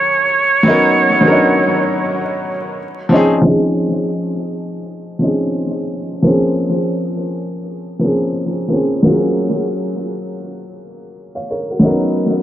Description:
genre	hip hop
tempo	86 BPM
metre	4/4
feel	swing 60% on 16ths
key	Db major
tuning	A4 = 440 Hz
part	trumpet with plunger mute	melody	0.0-2.8 s	Db5	-15 LUFS	right 3 dB	tape echo
part	clear upright piano	accompaniment	0.0-12.4 s	F3 to F5	-15 LUFS	equal	cassette tape, tape echo
room	moderate plate reverb, RT60 2.7 s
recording	echo-heavy mix, vinyl crackle, low-pass filter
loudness	-13 LUFS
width	side -12 dB against mid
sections	0.0-3.5 A section; 3.5-12.4 B section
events	filter sweep 3.5-12.4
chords	0.0 Gbmaj9; 0.7 Cbmaj9; 2.8 Dbmaj9; 6.3 Bbm9; 9.1 Gbmaj9; 11.8 Cbmaj9

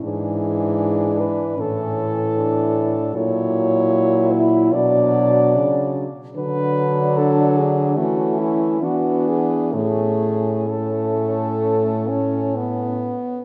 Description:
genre	classical, lyrical piece for horn quartet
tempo	62-78 BPM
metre	4/4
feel	rubato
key	A major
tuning	A4 = 440 Hz
part	warm French horn	second line	0.0-13.1 s	C#4 to E4	-28 LUFS	equal	none
part	clear French horn	accompaniment	0.0-13.4 s	E3 to C#4	-26 LUFS	equal	none
part	mellow French horn	bass	0.0-13.1 s	G#2 to E3	-25 LUFS	equal	none
part	warm French horn	melody	0.1-13.0 s	E4 to D5	-24 LUFS	equal	none
room	wet church reverb, RT60 2.8 s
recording	none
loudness	-19 LUFS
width	mono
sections	0.0-13.4 A section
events	none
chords	0.0 E7/G#; 1.6 A; 3.1 F#7/A#; 4.7 Bm; 6.4 Bm/D; 8.0 A/E; 8.8 E7; 9.7 A

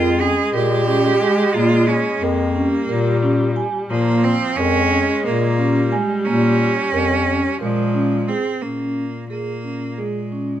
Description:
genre	contemporary instrumental, chamber music in an uneven meter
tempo	178 BPM (eighths)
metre	7/8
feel	straight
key	Bb dorian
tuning	A4 = 440 Hz
part	bright cello	melody	0.0-10.6 s	Ab3 to Ab4	-21 LUFS	right 5 dB	none
part	dark viola	second line	0.0-8.2 s	F3 to Ab3	-23 LUFS	equal	none
part	vibraphone with soft mallets	arpeggios	0.0-10.5 s	Ab3 to Ab5	-22 LUFS	right 2 dB	none
part	mellow bass clarinet	bass	0.0-10.6 s	F2 to Bb2	-22 LUFS	left 4 dB	none
room	light reverb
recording	close, detailed microphones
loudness	-16 LUFS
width	side -11 dB against mid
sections	0.0-8.6 A section; 8.6-10.6 B section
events	none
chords	0.0 Bbm7

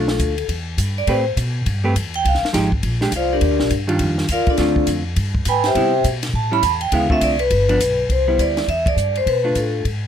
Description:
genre	jazz, small-group swing and bop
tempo	205 BPM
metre	4/4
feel	swing 62% on 8ths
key	C major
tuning	A4 = 440 Hz
part	vibraphone with medium hard mallets	melody	0.0-9.8 s	D4 to B5	-18 LUFS	left 1 dB	none
part	hollow-body jazz guitar	accompaniment	0.0-9.8 s	Db3 to B4	-21 LUFS	right 2 dB	none
part	upright bass	bass	0.0-10.1 s	G1 to C3	-21 LUFS	equal	none
part	compact cocktail drum kit	drums	0.1-9.9 s	hi-hat, kick drum, ride cymbal, snare drum	-25 LUFS	left 1 dB	none
room	light reverb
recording	none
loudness	-16 LUFS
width	side -9 dB against mid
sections	0.0-8.1 A section; 8.1-10.1 B section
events	vibraphone solo 0.0-8.1; band accent 8.8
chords	0.5 Em; 1.1 Am9; 2.2 Fm9; 2.8 Bb13; 3.4 Ebmaj9; 4.6 Dm7; 5.2 G; 5.8 Cmaj7; 6.3 A7; 6.9 Dm7; 7.5 G7; 8.1 Cmaj7; 9.3 Bm7b5

